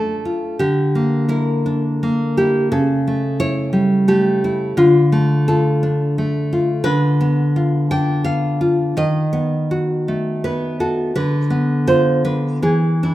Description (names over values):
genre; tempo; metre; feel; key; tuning
romantic piece for solo classical guitar; 85 BPM; 3/4; uneven beats, rubato; D minor; A4 = 437 Hz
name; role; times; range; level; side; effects
nylon-string guitar; solo; 0.0-13.1 s; C#3 to G5; -15 LUFS; equal; none
room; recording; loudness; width
wet recital hall reverb, RT60 1.6 s; minimal, uncompressed stereo recording; -15 LUFS; side -15 dB against mid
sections
0.0-13.1 A section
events
none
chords
0.0 Dm; 0.6 Em7b5/D; 2.7 A7/C#; 4.8 Dm; 6.9 Bdim/D; 9.0 B7/D#; 11.1 Bdim/D; 12.6 E7